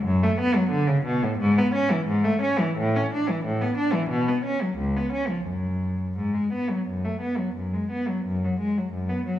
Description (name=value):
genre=classical, baroque-style suite movement for unaccompanied cello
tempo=88 BPM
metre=4/4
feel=uneven beats, rubato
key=F# minor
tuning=A4 = 440 Hz
part: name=rich cello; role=solo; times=0.0-9.4 s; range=C#2 to D4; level=-22 LUFS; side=equal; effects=none
room=wet recital hall reverb, RT60 1.4 s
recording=minimal, uncompressed stereo recording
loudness=-22 LUFS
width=side -12 dB against mid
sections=0.0-8.3 A section; 8.3-9.4 B section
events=none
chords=none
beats=| 0.05 0.71 1.38 2.05 | 2.74 3.42 4.09 4.77 | 5.46 6.17 6.87 7.56 | 8.26 8.94